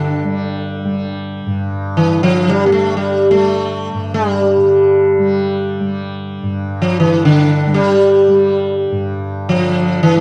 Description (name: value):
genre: indian classical, Hindustani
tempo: free time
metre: none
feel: none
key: G raga kafi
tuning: A4 = 440 Hz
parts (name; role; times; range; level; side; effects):
- sitar; melody; 0.0-10.2 s; D3 to Bb3; -15 LUFS; equal; none
- tanpura; drone; 0.0-10.2 s; G2 to G3; -23 LUFS; equal; none
room: moderate recital hall reverb, RT60 1.3 s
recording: dark, warm production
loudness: -15 LUFS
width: mono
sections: 0.0-10.2 A section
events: none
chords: none